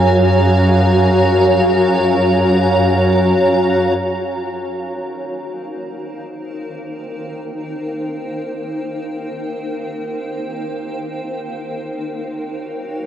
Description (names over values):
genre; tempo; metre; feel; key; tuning
ambient; free time; none; none; unclear; A4 = 440 Hz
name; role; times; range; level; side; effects
granular cloud pad; sustained chords; 0.0-13.1 s; Eb4 to Bb5; -17 LUFS; equal; built-in reverb
clear symphonic double bass section; bass; 0.0-3.9 s; Gb2; -16 LUFS; equal; tube saturation
room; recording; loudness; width
wet huge ambient reverb, RT60 8.8 s; worn, warbling old tape, cassette tape, warbly pitch drift; -15 LUFS; side -10 dB against mid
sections
0.0-4.0 A section; 4.0-13.1 B section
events
fade-in on ambient pad 4.0-13.1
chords
0.0 Gbmaj7; 4.0 Eb6; 11.9 Gbmaj7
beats
free time